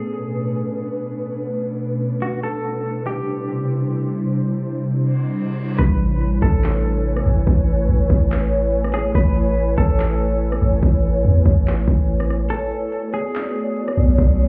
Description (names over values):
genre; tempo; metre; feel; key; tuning
hip hop, atmospheric cloud-rap; 143 BPM; 4/4; half-time; A major; A4 = 442 Hz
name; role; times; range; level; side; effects
semi-hollow electric guitar; melody; 0.0-14.1 s; F#4 to B4; -31 LUFS; equal; tremolo, low-pass filter, tape echo
ethereal airy pad; sustained chords; 0.0-14.5 s; B2 to G#5; -25 LUFS; equal; ensemble chorus, built-in reverb, sidechain pumping
reverse cymbal; sound effects; 5.1-5.8 s; none; -41 LUFS; equal; none
warm 808-style bass; bass; 5.8-14.5 s; A1 to E2; -20 LUFS; equal; none
trap drum kit; drums; 5.8-14.5 s; handclaps, hi-hat, kick drum, rim click; -22 LUFS; equal; overdrive
room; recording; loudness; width
little or no reverb; heard muffled through a wall, club reverb, EQ; -20 LUFS; mono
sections
0.0-5.8 A section; 5.8-14.5 B section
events
reverse cymbal 5.1-5.8; hi-hats muted 5.8-12.5; break 12.5-13.3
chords
0.0 Bm7; 2.4 Cadd9; 5.8 Amaj7; 12.5 Bm7